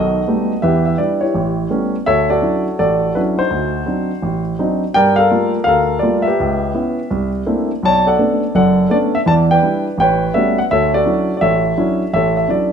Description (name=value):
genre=solo jazz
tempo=167 BPM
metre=4/4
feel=swing 64% on 8ths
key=D major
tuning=A4 = 441 Hz
part: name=warm grand piano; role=solo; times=0.0-12.7 s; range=F#1 to A5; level=-13 LUFS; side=equal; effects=none
room=wet large studio reverb, RT60 1.2 s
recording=minimal, uncompressed stereo recording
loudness=-13 LUFS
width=side -7 dB against mid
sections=0.0-2.1 A section; 2.1-12.7 A section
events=none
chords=0.0 B7b13; 0.6 Em7; 1.3 A9; 2.1 Dmaj9; 3.5 D7b9; 4.9 Gm9; 6.4 C#m7b5; 7.1 C13; 7.8 Bm9; 9.3 Em7; 10.0 A13; 10.7 Dmaj9